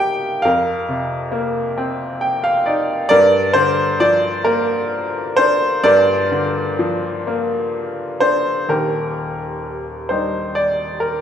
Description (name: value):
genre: classical, lyrical solo piano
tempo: 42-46 BPM (dotted quarters)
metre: 6/8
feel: rubato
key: G minor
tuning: A4 = 440 Hz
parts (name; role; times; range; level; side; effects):
- bright baby grand piano; solo; 0.0-11.2 s; Eb1 to G5; -16 LUFS; equal; none
room: wet recital hall reverb, RT60 1.4 s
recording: recorded in a church or concert hall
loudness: -16 LUFS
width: side -9 dB against mid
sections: 0.0-8.7 A section; 8.7-11.2 B section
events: grand piano fill 1.8-3.1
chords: 0.4 F7sus4; 3.1 Gm7; 8.7 Ebmaj7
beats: | 0.45 1.78 | 3.12 4.46 | 5.85 7.26 | 8.69 10.09